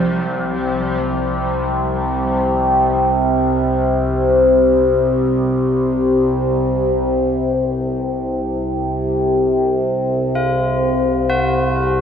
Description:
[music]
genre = dark ambient drone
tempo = free time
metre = none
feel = none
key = unclear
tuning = A4 = 436 Hz
[part]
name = tubular bells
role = arpeggios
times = 0.0-12.0 s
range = C4 to F#4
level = -25 LUFS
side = equal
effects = diffuse ambient delay
[part]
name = overtone-sweeping drone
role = drone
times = 0.0-12.0 s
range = C2 to C3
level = -15 LUFS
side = left 1 dB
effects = chorus, built-in reverb
[sound]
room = wet cathedral reverb, RT60 6.6 s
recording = dark, warm production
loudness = -15 LUFS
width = side -7 dB against mid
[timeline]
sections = 0.0-7.6 A section; 7.6-12.0 B section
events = fade-in on synth drone 0.0-7.6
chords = 0.0 C5; 7.6 Csus4

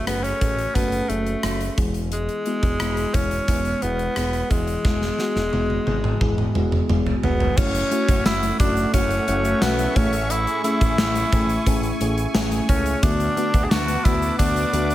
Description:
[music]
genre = 1980s-style pop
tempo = 88 BPM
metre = 4/4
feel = straight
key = F# minor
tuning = A4 = 442 Hz
[part]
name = raspy tenor saxophone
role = melody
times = 0.0-14.9 s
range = G#3 to G#4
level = -25 LUFS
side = equal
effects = none
[part]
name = FM electric piano with soft pad layer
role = accompaniment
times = 0.0-14.9 s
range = A2 to B4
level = -25 LUFS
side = left 2 dB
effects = chorus
[part]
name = picked electric bass with an envelope filter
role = bass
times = 0.0-14.9 s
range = E1 to D2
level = -26 LUFS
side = equal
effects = none
[part]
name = gated 80s drum kit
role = drums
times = 0.1-14.9 s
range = crash cymbal, hi-hat, kick drum, rim click, snare drum, tambourine, toms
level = -23 LUFS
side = equal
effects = gated reverb
[part]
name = sweeping resonant pad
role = sustained chords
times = 7.6-14.9 s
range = A3 to D6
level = -29 LUFS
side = right 1 dB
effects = chorus
[part]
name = egg shaker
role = percussion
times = 7.6-14.9 s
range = none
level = -43 LUFS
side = right 7 dB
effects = none
[sound]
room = light reverb, small room ambience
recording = none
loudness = -19 LUFS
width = side -14 dB against mid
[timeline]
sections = 0.0-7.6 A section; 7.6-14.9 B section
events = drum fill 4.8-7.6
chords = 0.0 F#m; 1.8 E; 7.6 F#m7; 10.0 Amaj7; 13.0 D6

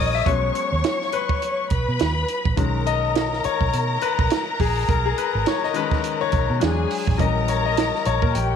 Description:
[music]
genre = lush 1970s-style soul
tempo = 104 BPM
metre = 4/4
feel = swing 58% on 16ths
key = B major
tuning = A4 = 440 Hz
[part]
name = warm studio string section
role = second line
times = 0.0-8.6 s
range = G4 to D#6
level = -25 LUFS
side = left 2 dB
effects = none
[part]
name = bright grand piano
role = accompaniment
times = 0.0-8.6 s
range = D#3 to E5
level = -24 LUFS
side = left 12 dB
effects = none
[part]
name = vintage muted fingered electric bass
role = bass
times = 0.0-8.6 s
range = G#1 to B2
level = -24 LUFS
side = right 1 dB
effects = none
[part]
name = compact cocktail drum kit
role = drums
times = 0.3-8.5 s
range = hi-hat, kick drum, snare drum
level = -24 LUFS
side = right 5 dB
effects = none
[sound]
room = moderate spring reverb, RT60 1.8 s, small room ambience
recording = 1960s-style stereo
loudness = -19 LUFS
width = side -7 dB against mid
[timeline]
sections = 0.0-8.6 A section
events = grand piano solo 0.0-8.6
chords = 0.3 G#m11/B; 2.6 B69; 6.6 E9; 7.2 A#dim7

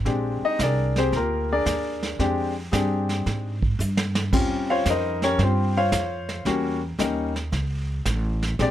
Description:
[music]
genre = jazz piano trio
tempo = 112 BPM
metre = 4/4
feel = swing 68% on 8ths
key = Bb mixolydian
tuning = A4 = 438 Hz
[part]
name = upright bass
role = bass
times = 0.0-8.7 s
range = A1 to Ab2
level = -26 LUFS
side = equal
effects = none
[part]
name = warm baby grand piano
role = melody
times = 0.1-8.7 s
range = G3 to F5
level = -24 LUFS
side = left 2 dB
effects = none
[part]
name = vintage brush drum kit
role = drums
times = 0.1-8.7 s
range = brushed snare drum, crash cymbal, hi-hat, kick drum, snare drum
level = -28 LUFS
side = right 2 dB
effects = none
[sound]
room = little or no reverb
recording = close, detailed microphones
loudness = -22 LUFS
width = side -12 dB against mid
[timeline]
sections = 0.0-8.7 A section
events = grand piano solo 0.0-8.7; drum fill 3.8-4.3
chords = 0.1 Bb13; 4.3 Eb13; 6.5 Edim7

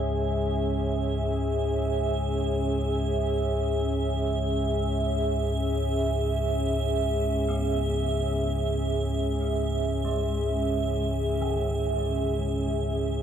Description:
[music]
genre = dark ambient drone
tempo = free time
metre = none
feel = none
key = C# minor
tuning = A4 = 436 Hz
[part]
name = dark analog pad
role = sustained chords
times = 0.0-13.2 s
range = C#4 to E5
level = -29 LUFS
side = right 1 dB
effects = chorus
[part]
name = deep rumbling drone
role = drone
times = 0.0-13.2 s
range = C#2 to G#2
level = -28 LUFS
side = left 1 dB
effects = built-in reverb
[part]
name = icy glass pad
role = texture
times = 0.0-13.2 s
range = E5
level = -32 LUFS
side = right 4 dB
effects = chorus, built-in reverb
[part]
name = gamelan-type bronze metallophone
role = arpeggios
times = 7.5-13.2 s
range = D#3 to B3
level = -42 LUFS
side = left 2 dB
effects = tape echo
[sound]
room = wet huge ambient reverb, RT60 8.8 s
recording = none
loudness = -24 LUFS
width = side -9 dB against mid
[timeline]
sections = 0.0-13.2 A section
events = fade-out on bronze metallophone 0.0-13.2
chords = 0.0 C#madd9

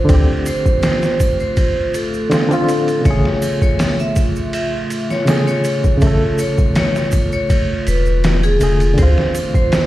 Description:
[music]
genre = trip hop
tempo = 81 BPM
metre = 4/4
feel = straight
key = unclear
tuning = A4 = 440 Hz
[part]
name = vibraphone with medium hard mallets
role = melody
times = 0.0-9.9 s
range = G#4 to E5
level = -21 LUFS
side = equal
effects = tape echo
[part]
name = barky reed electric piano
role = accompaniment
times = 0.0-9.9 s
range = C#3 to A4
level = -20 LUFS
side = equal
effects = tremolo, tape echo
[part]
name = dark analog pad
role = sustained chords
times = 0.0-9.9 s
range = A3 to F4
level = -25 LUFS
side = left 1 dB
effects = chorus
[part]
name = soft dub sub bass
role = bass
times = 0.1-9.2 s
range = E1 to D2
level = -15 LUFS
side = equal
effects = none
[part]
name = trip hop sampler-style drum kit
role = drums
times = 0.1-9.9 s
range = hi-hat, kick drum, ride cymbal, snare drum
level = -18 LUFS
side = equal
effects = overdrive, studio reverb
[part]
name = tube shaker and triangle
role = percussion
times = 0.1-9.9 s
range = none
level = -37 LUFS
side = right 5 dB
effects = none
[sound]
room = digital ambience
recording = played on a big sound system in a bare room, large studio reverb, vinyl crackle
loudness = -14 LUFS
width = side -15 dB against mid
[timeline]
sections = 0.0-9.9 A section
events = none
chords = 0.0 Dm7; 3.1 Amaj7; 9.0 Dm7

